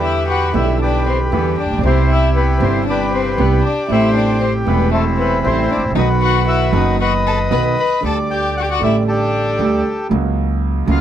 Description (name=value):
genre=tango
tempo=116 BPM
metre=4/4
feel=rubato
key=E minor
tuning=A4 = 440 Hz
part: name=bandoneon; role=melody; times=0.0-11.0 s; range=C4 to B5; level=-18 LUFS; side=left 2 dB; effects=none
part: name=warm violin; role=second line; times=0.0-11.0 s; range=A3 to B4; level=-22 LUFS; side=left 5 dB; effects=none
part: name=warm concert grand piano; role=accompaniment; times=0.0-11.0 s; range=E1 to G4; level=-19 LUFS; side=right 4 dB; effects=none
part: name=upright bass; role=bass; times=0.0-11.0 s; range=E1 to E2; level=-19 LUFS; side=equal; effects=none
room=light reverb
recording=none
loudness=-14 LUFS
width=side -10 dB against mid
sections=0.0-11.0 A section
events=none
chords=0.0 Em7; 1.8 Cmaj7; 3.9 Am7; 6.0 B; 8.0 Dsus4; 10.1 F#/C#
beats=0.29 0.81 1.32 | 1.84 2.35 2.87 3.38 | 3.90 4.41 4.92 5.44 | 5.96 6.47 6.99 7.51 | 8.04 8.56 9.07 9.59 | 10.11 10.62